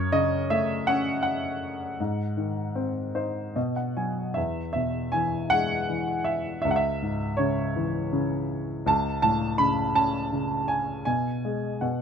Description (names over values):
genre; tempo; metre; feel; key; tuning
classical, lyrical solo piano; 80 BPM; 3/4; rubato; E major from 4.4 s; A4 = 440 Hz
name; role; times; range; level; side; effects
warm baby grand piano; solo; 0.0-12.0 s; C#2 to B5; -24 LUFS; equal; none
room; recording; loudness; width
light reverb; none; -24 LUFS; side -7 dB against mid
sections
0.0-4.4 A section; 4.4-12.0 B section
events
grand piano fill 2.8-4.4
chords
0.0 F#m; 2.0 G#; 3.6 B5; 4.4 E; 6.7 C#m; 8.9 A/C#; 11.1 G#m/B